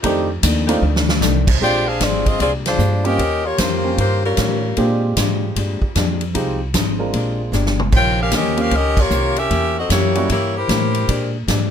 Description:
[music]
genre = jazz, big band swing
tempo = 152 BPM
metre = 4/4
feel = swing 64% on 8ths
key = Bb major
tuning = A4 = 440 Hz
[part]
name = hollow-body jazz guitar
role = accompaniment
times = 0.0-11.7 s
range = F2 to C5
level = -26 LUFS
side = left 8 dB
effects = none
[part]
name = warm baby grand piano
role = accompaniment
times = 0.0-10.3 s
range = G3 to Bb4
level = -22 LUFS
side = right 3 dB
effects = none
[part]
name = edgy saxophone section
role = sustained chords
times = 0.0-0.8 s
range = Eb3 to G4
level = -28 LUFS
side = equal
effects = none
[part]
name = upright bass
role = bass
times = 0.0-11.7 s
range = G1 to Bb2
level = -20 LUFS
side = right 1 dB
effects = none
[part]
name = swinging big-band drum kit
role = drums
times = 0.0-11.6 s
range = crash cymbal, hi-hat, kick drum, ride cymbal, snare drum, toms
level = -21 LUFS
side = equal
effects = none
[part]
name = warm saxophone section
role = melody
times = 1.6-5.0, 8.0-11.4 s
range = G3 to G5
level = -19 LUFS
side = left 2 dB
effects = none
[sound]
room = little or no reverb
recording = close, detailed microphones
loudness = -15 LUFS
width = side -8 dB against mid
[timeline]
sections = 0.0-1.6 A section; 1.6-11.7 B section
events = drum fill 0.8-1.2, 7.5-7.9; band accent 2.6, 8.9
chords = 0.0 F13; 1.6 Bb13; 3.2 Eb13; 4.8 Bb13; 6.3 Fm7; 7.1 Bb13; 7.9 Eb13; 9.5 Edim7; 11.1 Bb13

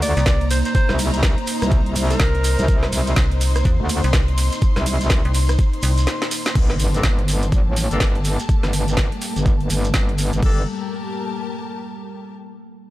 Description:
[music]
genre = bass house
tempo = 124 BPM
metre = 4/4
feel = swing 61% on 16ths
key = G minor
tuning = A4 = 440 Hz
[part]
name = clear alto saxophone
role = melody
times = 0.0-2.8 s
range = Bb4 to D5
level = -26 LUFS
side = equal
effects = dub echo
[part]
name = deep dark ambient pad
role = sustained chords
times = 0.0-10.7 s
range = G3 to C5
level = -30 LUFS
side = equal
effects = chorus, built-in reverb, sidechain pumping
[part]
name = metallic wobble bass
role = bass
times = 0.0-10.7 s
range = G1 to D2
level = -20 LUFS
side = equal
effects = chorus, sidechain pumping
[part]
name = garage drum kit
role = drums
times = 0.0-10.5 s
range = crash cymbal, hi-hat, ride cymbal, rim click, snare drum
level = -25 LUFS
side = equal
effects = overdrive
[part]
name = shekere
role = percussion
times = 0.0-10.4 s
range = none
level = -32 LUFS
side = right 2 dB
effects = none
[part]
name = rich studio string section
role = texture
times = 0.0-12.3 s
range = Bb3 to C6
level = -31 LUFS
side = left 3 dB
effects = sidechain pumping
[part]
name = metallic FM bass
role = bass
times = 0.2-6.1 s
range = C2 to Eb2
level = -18 LUFS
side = equal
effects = tube saturation, sidechain pumping
[part]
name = electronic kick drum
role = drums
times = 0.3-10.5 s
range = none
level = -18 LUFS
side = equal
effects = overdrive
[part]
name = impact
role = sound effects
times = 6.6-8.5 s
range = none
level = -28 LUFS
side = equal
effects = none
[part]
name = clear horn section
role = stabs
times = 6.9-10.6 s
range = G3 to A4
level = -31 LUFS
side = left 3 dB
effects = sidechain pumping, dub echo
[sound]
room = studio reverb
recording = none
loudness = -16 LUFS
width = side -16 dB against mid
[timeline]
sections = 0.0-6.6 A section; 6.6-10.4 B section; 10.4-12.4 C section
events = drop 0.0-6.6; break 6.1-6.6; drum fill 6.1-6.6; impact 6.6-8.5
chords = 0.0 Cm7; 6.6 Gmadd9

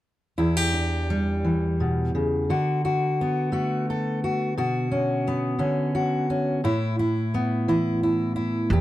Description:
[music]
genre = acoustic folk duo or small band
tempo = 86 BPM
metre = 3/4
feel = straight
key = E dorian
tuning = A4 = 444 Hz
[part]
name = fingerpicked steel-string acoustic guitar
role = accompaniment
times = 0.4-8.8 s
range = E2 to A4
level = -22 LUFS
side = equal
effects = none
[part]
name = upright bass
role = bass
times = 8.7-8.8 s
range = E2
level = -19 LUFS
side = right 1 dB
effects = none
[sound]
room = light reverb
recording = close, detailed microphones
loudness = -22 LUFS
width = side -14 dB against mid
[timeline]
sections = 0.4-8.7 A section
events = none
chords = 0.4 Em7; 2.5 D6; 4.6 Bmadd9; 6.6 Asus2

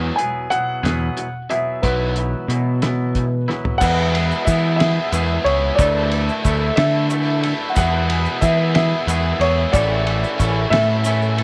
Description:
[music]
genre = indie rock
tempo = 61 BPM (dotted quarters)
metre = 6/8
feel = straight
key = E mixolydian from 3.8 s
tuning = A4 = 440 Hz
[part]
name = biting overdriven guitar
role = riff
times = 0.0-11.4 s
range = E2 to E4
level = -27 LUFS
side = equal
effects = ensemble chorus
[part]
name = twangy electric guitar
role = riff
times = 0.0-11.4 s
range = F#3 to A4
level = -29 LUFS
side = equal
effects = none
[part]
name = growling picked electric bass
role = bass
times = 0.0-11.4 s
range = A1 to E3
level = -22 LUFS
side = equal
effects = overdrive
[part]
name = dark upright piano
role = melody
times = 0.2-11.4 s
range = B4 to G#5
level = -24 LUFS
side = equal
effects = none
[part]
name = cloth-damped thuddy drum kit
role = drums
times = 0.2-11.4 s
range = crash cymbal, hi-hat, kick drum, ride cymbal, snare drum, toms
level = -26 LUFS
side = equal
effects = none
[part]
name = soft synth bell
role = second line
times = 3.8-11.3 s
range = B4 to F#5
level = -34 LUFS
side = equal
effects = none
[part]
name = tube shaker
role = percussion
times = 3.8-11.3 s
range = none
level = -38 LUFS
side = equal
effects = none
[sound]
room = light reverb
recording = worn, warbling old tape, cassette tape, warbly pitch drift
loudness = -19 LUFS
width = mono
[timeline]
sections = 0.0-3.8 A section; 3.8-11.4 B section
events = drum fill 3.5-3.8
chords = 0.0 Eadd9; 1.8 Bsus4; 3.8 E; 5.8 Dsus2; 7.8 E; 9.7 A

